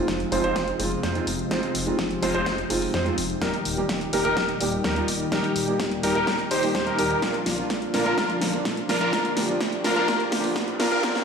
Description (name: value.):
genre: EDM, festival progressive house.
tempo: 126 BPM.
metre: 4/4.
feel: straight.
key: unclear.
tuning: A4 = 440 Hz.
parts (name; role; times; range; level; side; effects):
felt-muted upright piano; accompaniment; 0.0-11.2 s; F3 to G4; -28 LUFS; right 3 dB; sidechain pumping, dub echo.
lush unison pad; sustained chords; 0.0-11.2 s; Bb2 to G4; -30 LUFS; left 2 dB; chorus, sidechain pumping.
detuned saw bass; bass; 0.1-11.1 s; Eb1 to Bb2; -36 LUFS; left 1 dB; sidechain pumping.
big-room dance drum kit; drums; 0.1-11.2 s; hi-hat, snare drum; -28 LUFS; left 1 dB; studio reverb.
electronic kick drum; drums; 0.1-11.1 s; none; -36 LUFS; left 1 dB; none.
warm concert grand piano; arpeggios; 0.3-11.2 s; Bb4 to C5; -28 LUFS; equal; sidechain pumping, low-pass filter, dub echo.
supersaw chords; riff; 0.3-11.2 s; Ab3 to C5; -29 LUFS; equal; phaser, vintage 12-bit sampler grit, sidechain pumping, low-pass filter, dub echo.
riser; sound effects; 8.8-11.2 s; none; -39 LUFS; left 1 dB; none.
room: wet digital room reverb, RT60 1.2 s.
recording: played on a big sound system in a bare room, large studio reverb, high-pass filter.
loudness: -22 LUFS.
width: side -6 dB against mid.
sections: 0.0-11.2 A section.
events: build-up 0.0-11.2; drum fill 0.0-11.2; filter sweep on supersaw synth 0.0-11.2; filter sweep on analog synth pad 0.0-11.2.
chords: 0.0 Fm7; 3.4 Eb; 7.2 Bb.